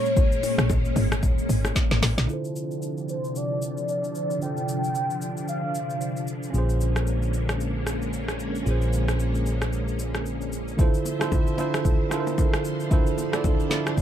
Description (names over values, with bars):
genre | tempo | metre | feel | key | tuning
amapiano | 113 BPM | 4/4 | swing 58% on 16ths | D minor | A4 = 435 Hz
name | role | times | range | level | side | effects
warm velvety synth lead | melody | 0.0-6.2 s | C5 to G5 | -29 LUFS | equal | chorus, low-pass filter, digital delay
string machine, violins | sustained chords | 0.0-14.0 s | Bb2 to E5 | -31 LUFS | left 1 dB | ensemble chorus, low-pass filter
afro-pop drum kit | drums | 0.1-14.0 s | hi-hat, kick drum, rim click, shaker, snare drum | -25 LUFS | equal | none
congas and bongos | percussion | 0.2-1.9, 10.8-14.0 s | none | -33 LUFS | left 4 dB | none
woody log drum bass | bass | 0.6-2.3 s | Ab1 to Bb1 | -24 LUFS | equal | none
tine electric piano | accompaniment | 2.3-14.0 s | D3 to D5 | -29 LUFS | right 4 dB | analog chorus, low-pass filter
hollow-body short-scale fingered electric bass | bass | 6.5-10.7 s | Bb1 | -25 LUFS | equal | none
room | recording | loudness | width
little or no reverb | dark, warm production | -22 LUFS | side -10 dB against mid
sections
0.0-2.3 A section; 2.3-10.8 B section; 10.8-14.0 C section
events
drop 0.0-2.3; drum fill 1.8-2.3; filter sweep 2.3-10.8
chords
0.0 Bbm7; 2.3 Dm9; 6.5 Bbm9; 10.8 Dm9